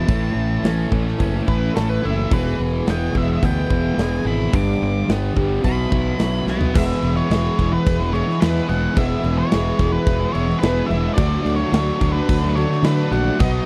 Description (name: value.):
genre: classic rock.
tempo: 108 BPM.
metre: 4/4.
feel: straight.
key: E mixolydian.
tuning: A4 = 444 Hz.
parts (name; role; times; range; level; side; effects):
octave-fuzz lead guitar; melody; 0.0-13.7 s; A4 to D6; -29 LUFS; equal; distortion.
fingerpicked twelve-string acoustic guitar; accompaniment; 0.0-13.7 s; E2 to A4; -30 LUFS; equal; none.
distorted electric guitar; riff; 0.0-13.7 s; G2 to E4; -31 LUFS; equal; overdrive.
sludgy distorted guitar; riff; 0.0-13.7 s; E2 to E4; -26 LUFS; equal; overdrive.
fuzz fingered electric bass; bass; 0.1-13.6 s; E1 to D3; -24 LUFS; equal; overdrive.
big rock drum kit; drums; 0.1-13.5 s; crash cymbal, hi-hat, kick drum, snare drum, toms; -24 LUFS; equal; none.
room: little or no reverb.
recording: dry, close 1970s-style studio recording.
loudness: -19 LUFS.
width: mono.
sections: 0.0-6.7 A section; 6.7-13.7 B section.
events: lead electric guitar solo 0.0-6.7; drum fill 6.5.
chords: 0.1 A; 2.3 E; 4.5 G; 5.6 Bsus4; 6.7 E; 11.2 D.